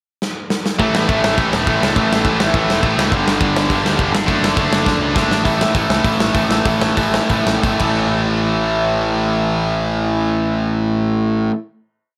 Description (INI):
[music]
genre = punk rock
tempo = 172-207 BPM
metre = 4/4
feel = straight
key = unclear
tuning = A4 = 440 Hz
[part]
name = big rock drum kit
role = drums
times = 0.2-7.9 s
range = crash cymbal, hi-hat, kick drum, snare drum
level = -22 LUFS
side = equal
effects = none
[part]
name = cranked stack guitar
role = riff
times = 0.8-11.6 s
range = G2 to D4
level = -21 LUFS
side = equal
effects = overdrive
[part]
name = heavy high-gain guitar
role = riff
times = 0.8-5.3 s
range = G2 to D4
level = -25 LUFS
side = equal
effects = distortion
[part]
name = tight distorted guitar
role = riff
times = 0.8-11.5 s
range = G2 to D4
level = -23 LUFS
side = equal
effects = distortion
[part]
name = fuzz picked electric bass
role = bass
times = 0.8-11.5 s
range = E1 to D2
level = -25 LUFS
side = equal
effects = overdrive
[sound]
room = light reverb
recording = none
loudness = -17 LUFS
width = mono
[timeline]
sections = 0.0-0.8 pickup bar; 0.8-5.5 riff; 5.5-8.0 outro; 8.0-10.8 final hit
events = drum fill 0.2-0.8, 4.9-5.5, 7.8; slowing down 5.5-8.0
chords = 0.0 N.C.; 0.8 A5; 3.1 G5; 4.1 D/F#; 5.5 A5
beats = 0.21 0.50 | 0.79 1.08 1.37 1.66 | 1.95 2.24 2.53 2.83 | 3.12 3.41 3.70 3.99 | 4.28 4.58 4.87 5.16 | 5.46 5.75 6.05 6.35 | 6.66 6.98 7.30 7.63 | 7.98 8.33 8.68 9.03 | 9.38 9.73 10.07 10.42